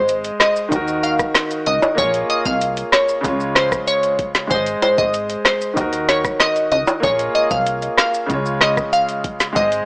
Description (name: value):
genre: dancehall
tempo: 95 BPM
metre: 4/4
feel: straight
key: unclear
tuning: A4 = 440 Hz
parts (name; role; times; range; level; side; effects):
- glassy wavetable pluck; melody; 0.0-9.7 s; C5 to F5; -18 LUFS; equal; chorus, analog delay
- clear baby grand piano; accompaniment; 0.0-9.9 s; Db3 to Eb5; -22 LUFS; equal; sidechain pumping
- plucky analog bass; bass; 0.0-9.8 s; Ab1 to Eb2; -26 LUFS; equal; none
- island pop drum kit; drums; 0.1-9.9 s; hi-hat, kick drum, rim click, snare drum; -18 LUFS; equal; none
- maracas and timbales; percussion; 0.1-9.9 s; none; -24 LUFS; equal; none
room: little or no reverb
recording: dry, gritty hardware recording, small speaker sound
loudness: -15 LUFS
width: side -33 dB against mid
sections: 0.0-9.9 A section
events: none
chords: 0.0 Ab; 0.7 Ebm; 2.0 Bbm7; 3.2 Db; 4.5 Ab; 5.8 Ebm; 7.0 Bbm7; 8.3 Db